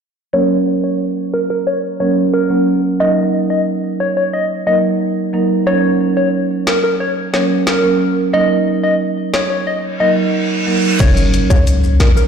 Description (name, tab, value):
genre	dancehall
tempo	90 BPM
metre	4/4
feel	straight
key	unclear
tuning	A4 = 441 Hz
part	soft struck synth lead	melody	0.3-12.3 s	Bb4 to Eb5	-18 LUFS	left 1 dB	chorus, low-pass filter, ping-pong delay
part	marimba with medium mallets	accompaniment	0.3-11.6 s	Gb3 to Bb4	-16 LUFS	right 2 dB	sidechain pumping, low-pass filter
part	island pop drum kit	drums	6.7-12.2 s	crash cymbal, hi-hat, kick drum, snare drum	-18 LUFS	left 1 dB	none
part	reverse cymbal	sound effects	9.9-11.0 s	none	-22 LUFS	right 2 dB	none
part	short 808-style bass	bass	11.0-12.3 s	Gb1 to Db2	-12 LUFS	left 1 dB	none
part	maracas	percussion	11.0-12.3 s	none	-31 LUFS	left 8 dB	none
room	light reverb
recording	played on a big sound system in a bare room, large studio reverb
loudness	-13 LUFS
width	side -7 dB against mid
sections	0.3-11.0 A section; 11.0-12.3 B section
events	filter sweep 0.3-11.0; reverse cymbal 9.9-11.0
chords	0.3 Gb; 3.0 Ebm; 5.7 Gb; 8.3 Ebm; 11.0 Gb